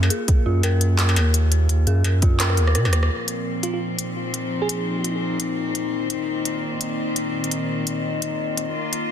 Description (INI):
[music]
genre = half-time drum and bass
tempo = 170 BPM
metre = 4/4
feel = swing 57% on 16ths, half-time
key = unclear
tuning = A4 = 440 Hz
[part]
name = dark detuned synth bell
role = arpeggios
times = 0.0-3.1 s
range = F4 to Bb4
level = -29 LUFS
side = equal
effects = chorus, ping-pong delay
[part]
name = saturated sub bass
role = bass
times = 0.0-3.1 s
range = Eb2 to C3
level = -18 LUFS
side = equal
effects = none
[part]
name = industrial drum kit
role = drums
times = 0.0-9.0 s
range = handclaps, hi-hat, rim click, struck metal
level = -24 LUFS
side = left 1 dB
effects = none
[part]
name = metallic inharmonic drone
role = texture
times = 0.0-9.1 s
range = Bb3 to Eb4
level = -29 LUFS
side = left 5 dB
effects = chorus, built-in reverb, phaser
[part]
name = electronic kick drum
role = drums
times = 0.3-2.3 s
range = none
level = -17 LUFS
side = equal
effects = none
[part]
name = clear chamber cello section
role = sustained chords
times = 3.1-9.1 s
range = Bb2 to F4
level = -26 LUFS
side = left 1 dB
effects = sidechain pumping
[part]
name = bell-like FM electric piano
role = melody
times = 3.6-5.1 s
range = F4 to Ab4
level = -30 LUFS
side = right 4 dB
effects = chorus, tremolo, cassette tape, ping-pong delay
[sound]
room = light reverb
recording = dense, heavily limited modern master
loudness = -19 LUFS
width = side -9 dB against mid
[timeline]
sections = 0.0-3.1 A section; 3.1-9.1 B section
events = drum fill 2.4-3.1; band accent 3.0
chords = 0.0 Ebmadd9; 3.1 Bbsus2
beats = | 0.28 0.64 0.99 1.34 | 1.70 2.05 2.40 2.75 | 3.11 3.46 3.81 4.17 | 4.52 4.87 5.22 5.58 | 5.93 6.28 6.64 6.99 | 7.34 7.70 8.05 8.40 | 8.75 9.11